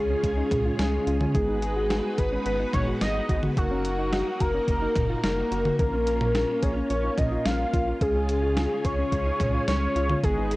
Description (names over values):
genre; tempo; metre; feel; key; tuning
synth-pop; 108 BPM; 4/4; straight; unclear; A4 = 441 Hz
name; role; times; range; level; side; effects
fat analog lead; melody; 0.0-10.6 s; F#4 to E#5; -27 LUFS; equal; chorus
mellow synth brass; accompaniment; 0.0-10.6 s; G#3 to A#4; -32 LUFS; equal; chorus
string machine, violins; sustained chords; 0.0-10.6 s; C#3 to B4; -33 LUFS; equal; ensemble chorus
soft round pluck; arpeggios; 0.0-10.6 s; C#4 to G#4; -36 LUFS; left 2 dB; chorus, tape echo
rubbery square bass; bass; 0.0-10.6 s; F#1 to C#2; -29 LUFS; equal; none
clean 12-bit digital drum machine; drums; 0.2-10.6 s; hi-hat, kick drum, snare drum, toms; -28 LUFS; equal; overdrive, vintage 12-bit sampler grit
room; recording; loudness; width
light reverb; worn, warbling old tape, cassette tape, warbly pitch drift; -22 LUFS; side -19 dB against mid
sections
0.0-10.6 A section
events
none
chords
0.0 C#; 1.3 G#m7; 3.6 D#m/F#; 5.8 A#m; 8.0 C#